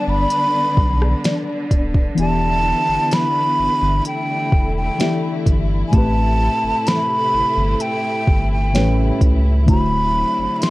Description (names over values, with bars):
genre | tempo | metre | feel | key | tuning
contemporary R&B | 64 BPM | 4/4 | straight | E minor | A4 = 440 Hz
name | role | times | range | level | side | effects
breathy concert flute | melody | 0.0-10.7 s | G5 to C6 | -20 LUFS | equal | ping-pong delay
muted felt-like synth keys | accompaniment | 0.0-10.7 s | A2 to D5 | -24 LUFS | left 2 dB | chorus
warm studio string section | sustained chords | 0.0-10.7 s | C3 to E4 | -25 LUFS | equal | none
warm sub bass | bass | 0.1-10.5 s | D1 to C#2 | -19 LUFS | equal | none
smooth R&B drum kit | drums | 0.3-10.7 s | hi-hat, kick drum, rim click, snare drum | -17 LUFS | equal | none
worn celesta | texture | 1.2-10.1 s | C#5 to E5 | -33 LUFS | left 1 dB | ping-pong delay
room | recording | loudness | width
little or no reverb | worn, warbling old tape, cassette tape, warbly pitch drift | -15 LUFS | side -19 dB against mid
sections
0.0-10.7 A section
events
kick muted 2.2-4.1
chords
0.0 Gmaj7; 2.2 Em7; 5.9 Am7; 8.7 A7; 9.7 D9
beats
0.30 1.24 | 2.18 3.12 4.05 4.99 | 5.93 6.87 7.80 8.74 | 9.68 10.62